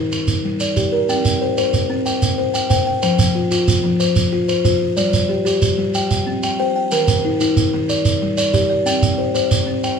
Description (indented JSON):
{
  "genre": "southern african traditional, mbira-style interlocking cycle",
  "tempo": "123 BPM (dotted quarters)",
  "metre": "12/8",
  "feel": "straight",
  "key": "C equiheptatonic",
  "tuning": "A4 = 439 Hz",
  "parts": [
    { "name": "buzzing kalimba", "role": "arpeggios", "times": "0.0-10.0 s", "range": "Eb3+43c to G5", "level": "-17 LUFS", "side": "left 2 dB", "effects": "none" },
    { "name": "shekere", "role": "percussion", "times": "0.1-10.0 s", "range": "none", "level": "-19 LUFS", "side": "right 4 dB", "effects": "none" }
  ],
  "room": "wet studio reverb, RT60 0.8 s",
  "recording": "band playing live in one room",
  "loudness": "-15 LUFS",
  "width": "side -6 dB against mid",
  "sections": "0.0-1.1 A section; 1.1-10.0 B section",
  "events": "none",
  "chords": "0.1 Gm; 1.1 C5; 3.0 F5; 5.0 G5; 5.9 C5; 6.9 Eb; 7.9 G5; 8.9 C5",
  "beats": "0.12 0.60 | 1.09 1.57 2.06 2.54 | 3.03 3.51 4.00 4.48 | 4.97 5.46 5.94 6.43 | 6.92 7.40 7.89 8.38 | 8.86 9.35 9.84"
}